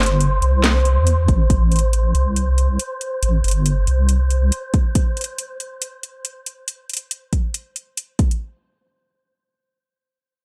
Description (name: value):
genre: deep dubstep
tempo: 139 BPM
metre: 4/4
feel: swing 57% on 16ths, half-time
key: A minor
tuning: A4 = 439 Hz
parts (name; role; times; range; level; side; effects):
- deep soft wobble bass; bass; 0.0-4.5 s; G1 to E2; -18 LUFS; equal; chorus, tube saturation
- garage drum kit; drums; 0.0-8.4 s; hi-hat, snare drum; -25 LUFS; equal; small room ambience
- wind-like tuned noise texture; texture; 0.0-5.0 s; C5; -29 LUFS; equal; built-in reverb
- electronic kick drum; drums; 1.3-1.6, 4.7-8.3 s; none; -19 LUFS; equal; small room ambience
room: little or no reverb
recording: dry, gritty hardware recording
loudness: -19 LUFS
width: mono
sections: 0.0-8.4 A section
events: none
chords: 0.0 Am